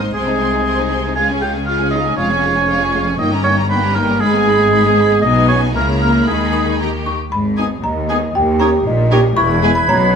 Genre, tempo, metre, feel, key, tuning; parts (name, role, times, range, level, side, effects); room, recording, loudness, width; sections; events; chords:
cinematic, playful, whimsical film cue; 118 BPM; 2/4; straight; G# minor from 3.2 s; A4 = 441 Hz
warm studio violin section; melody; 0.0-9.7 s; B4 to C6; -27 LUFS; left 2 dB
warm chamber violin section; second line; 0.0-9.7 s; D#4 to C5; -26 LUFS; right 2 dB
rich studio viola section; accompaniment; 0.0-9.7 s; Ab3 to G4; -23 LUFS; left 2 dB
rich studio cello section; bass; 0.0-10.2 s; D#2 to D#3; -21 LUFS; left 2 dB
warm studio double bass section; bass; 0.0-10.2 s; E1 to D#2; -20 LUFS; right 1 dB
warm oboe; second line; 0.1-10.2 s; Ab4 to Ab5; -18 LUFS; right 2 dB
mellow French horn section; sustained chords; 0.1-9.7 s; G#3 to Ab4; -20 LUFS; right 1 dB
folk marimba with medium hard mallets; melody; 6.5-10.1 s; G5 to D#6; -20 LUFS; left 1 dB
large flute ensemble; second line; 7.6-10.2 s; D#6 to G#6; -22 LUFS; right 2 dB
mellow bassoon; accompaniment; 7.8-10.2 s; C#4 to G4; -18 LUFS; right 1 dB
wet stone room reverb, RT60 1.2 s; minimal, uncompressed stereo recording; -13 LUFS; side -6 dB against mid
0.0-7.3 A section; 7.3-10.2 B section
0.1 Ab/C; 1.2 Db; 2.2 Db/F; 3.2 D#7/G; 4.2 G#m; 5.2 G#m/B; 5.8 A#dim/C#; 6.3 G#m/D#; 6.8 D#; 7.3 G#m; 8.4 D#7; 9.4 E6